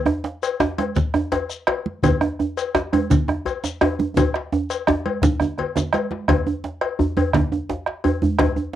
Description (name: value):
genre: west african traditional, West African drum ensemble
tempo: 113 BPM (dotted quarters)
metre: 12/8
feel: straight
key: none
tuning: none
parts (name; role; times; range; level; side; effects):
- bombo; percussion; 0.1-8.6 s; none; -22 LUFS; equal; none
- djembe; percussion; 0.1-8.6 s; none; -27 LUFS; left 6 dB; none
- djembe; percussion; 0.1-8.8 s; none; -22 LUFS; right 3 dB; none
- cowbell; percussion; 0.4-8.6 s; none; -26 LUFS; left 8 dB; none
- shekere; percussion; 0.4-6.0 s; none; -31 LUFS; left 4 dB; none
- congas; percussion; 0.8-8.7 s; none; -24 LUFS; right 3 dB; none
room: light reverb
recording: home recording on cassette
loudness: -19 LUFS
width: side -11 dB against mid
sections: 0.0-6.3 A section; 6.3-8.8 A section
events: drum fill 4.2-6.3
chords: none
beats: 0.42 0.96 1.50 | 2.03 2.57 3.10 3.63 | 4.17 4.70 5.23 5.76 | 6.29 6.81 7.34 7.87 | 8.39